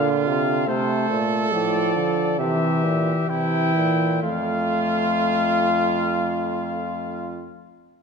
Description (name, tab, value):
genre	classical, imitative canzona for brass ensemble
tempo	62-75 BPM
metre	4/4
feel	straight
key	F major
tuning	A4 = 437 Hz
part	mellow cornet	melody	0.0-7.4 s	C5 to G5	-26 LUFS	left 11 dB	none
part	warm trumpet	second line	0.0-7.5 s	E4 to A4	-26 LUFS	right 5 dB	none
part	dark trombone	accompaniment	0.0-7.4 s	D3 to A3	-24 LUFS	right 1 dB	none
part	warm euphonium	bass	0.0-7.4 s	F2 to D3	-27 LUFS	right 4 dB	none
room	wet recital hall reverb, RT60 1.6 s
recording	none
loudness	-19 LUFS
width	side -5 dB against mid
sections	0.0-4.2 A section; 4.2-8.0 B section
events	slowing down 0.0-4.2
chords	0.0 Bb; 2.4 C; 4.2 F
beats	| 0.69 1.52 2.40 3.29 | 4.22 5.17 6.12 7.08